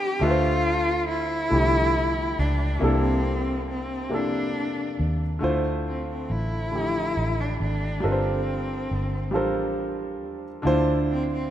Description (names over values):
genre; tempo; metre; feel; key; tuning
slow six-eight R&B; 46 BPM (dotted quarters); 6/8; straight; D minor; A4 = 441 Hz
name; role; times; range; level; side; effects
warm cello; melody; 0.0-11.5 s; C4 to G4; -27 LUFS; equal; none
warm baby grand piano; accompaniment; 0.0-11.5 s; C3 to E5; -26 LUFS; equal; none
vintage muted fingered electric bass; bass; 0.0-11.5 s; G1 to Eb2; -27 LUFS; equal; none
room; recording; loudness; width
moderate lush hall reverb, RT60 2.6 s; rough home demo mix; -22 LUFS; side -11 dB against mid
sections
0.0-5.4 A section; 5.4-11.5 B section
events
none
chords
0.2 Dm9; 2.8 C13; 5.4 Dm9; 8.0 Gm11; 10.6 Dm9